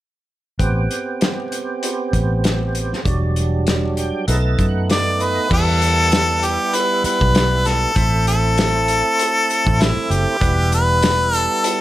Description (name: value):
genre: straight-eighth soul blues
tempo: 98 BPM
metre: 4/4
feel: swing 55% on 16ths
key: E minor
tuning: A4 = 444 Hz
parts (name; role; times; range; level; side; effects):
- percussive tonewheel organ; accompaniment; 0.6-11.8 s; F#3 to A5; -23 LUFS; right 3 dB; slow rotary speaker, overdrive, chorus vibrato, plate reverb
- vintage muted fingered electric bass; bass; 0.6-11.5 s; E1 to F#2; -19 LUFS; equal; none
- warm soul drum kit; drums; 0.6-11.8 s; crash cymbal, hi-hat, kick drum, snare drum; -21 LUFS; left 1 dB; none
- bright harmonica; melody; 4.9-11.8 s; E4 to D5; -18 LUFS; left 1 dB; plate reverb
room: moderate studio reverb, RT60 0.5 s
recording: none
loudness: -15 LUFS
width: side -14 dB against mid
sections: 0.6-5.5 A section; 5.5-11.8 B section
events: tonewheel organ fill 3.7-5.5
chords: 0.6 Am7; 3.0 Em7; 4.3 B7; 5.5 Em; 8.0 Am; 10.4 Em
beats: | 0.59 1.21 1.82 2.44 | 3.05 3.67 4.28 4.89 | 5.51 6.12 6.74 7.35 | 7.96 8.57 9.19 9.80 | 10.41 11.03 11.64